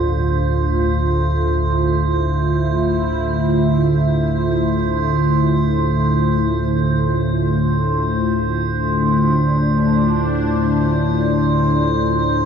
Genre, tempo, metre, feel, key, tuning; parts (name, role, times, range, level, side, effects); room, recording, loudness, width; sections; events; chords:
dark ambient drone; free time; D minor; A4 = 440 Hz
sweeping resonant pad; sustained chords; 0.0-12.5 s; D3 to A4; -19 LUFS; right 1 dB; chorus
old church bells; arpeggios; 0.0-1.3 s; barely audible
analog drone; drone; 0.0-12.5 s; D2 to A2; -19 LUFS; left 1 dB; chorus
metallic inharmonic drone; texture; 0.0-12.5 s; C5; -23 LUFS; right 3 dB; chorus, built-in reverb
moderate plate reverb, RT60 3.0 s; echo-heavy mix; -15 LUFS; side -7 dB against mid
0.0-12.5 A section
0.0 Dm7